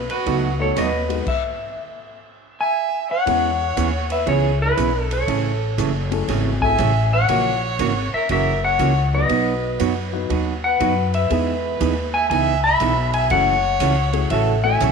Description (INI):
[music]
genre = country, western swing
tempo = 120 BPM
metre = 4/4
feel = swing 66% on 8ths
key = E major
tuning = A4 = 440 Hz
[part]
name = clean lap steel guitar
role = melody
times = 0.0-14.9 s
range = B4 to B5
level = -21 LUFS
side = left 3 dB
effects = none
[part]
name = clear fiddle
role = second line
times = 0.0-14.9 s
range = E4 to E5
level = -26 LUFS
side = right 8 dB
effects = none
[part]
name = upright bass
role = bass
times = 0.0-14.9 s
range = F#1 to F#2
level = -22 LUFS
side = left 2 dB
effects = none
[part]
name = swinging big-band drum kit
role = drums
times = 0.1-14.9 s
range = crash cymbal, hi-hat, kick drum, ride cymbal, snare drum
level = -31 LUFS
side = equal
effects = none
[part]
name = archtop guitar, miked and amplified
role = accompaniment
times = 0.3-14.9 s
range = B2 to G#4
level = -24 LUFS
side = right 11 dB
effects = none
[part]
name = warm upright piano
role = accompaniment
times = 0.6-14.8 s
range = F#3 to B4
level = -29 LUFS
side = left 15 dB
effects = none
[sound]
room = moderate plate reverb, RT60 1.9 s, small room ambience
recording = 1960s-style stereo with parts hard left and right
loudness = -17 LUFS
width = side -5 dB against mid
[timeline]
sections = 0.0-3.3 A section; 3.3-14.9 B section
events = stop 1.3-3.3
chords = 0.0 B7; 1.3 N.C.; 3.3 E6; 5.3 Amaj7; 7.3 F#7; 9.3 B; 11.3 Emaj7; 13.3 F#m7